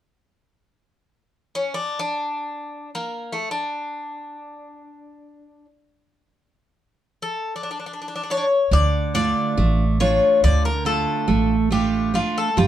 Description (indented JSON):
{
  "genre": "greek folk, Greek bouzouki band",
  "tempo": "free time",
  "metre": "none",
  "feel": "none",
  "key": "D harmonic minor",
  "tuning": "A4 = 440 Hz",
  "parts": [
    { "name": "Greek bouzouki", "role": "melody", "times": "1.6-12.7 s", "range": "A3 to D5", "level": "-23 LUFS", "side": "left 3 dB", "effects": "none" },
    { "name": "picked steel-string acoustic guitar", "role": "accompaniment", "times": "8.7-12.7 s", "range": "D3 to F4", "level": "-22 LUFS", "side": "right 6 dB", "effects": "none" },
    { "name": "upright bass", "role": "bass", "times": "8.7-12.7 s", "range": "G1 to D2", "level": "-20 LUFS", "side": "right 1 dB", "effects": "none" }
  ],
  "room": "moderate studio reverb, RT60 0.6 s",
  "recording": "band playing live in one room",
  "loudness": "-19 LUFS",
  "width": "side -11 dB against mid",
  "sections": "1.0-8.7 A section; 8.7-12.7 B section",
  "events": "none",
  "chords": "1.0 N.C.; 8.7 Dm",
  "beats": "free time"
}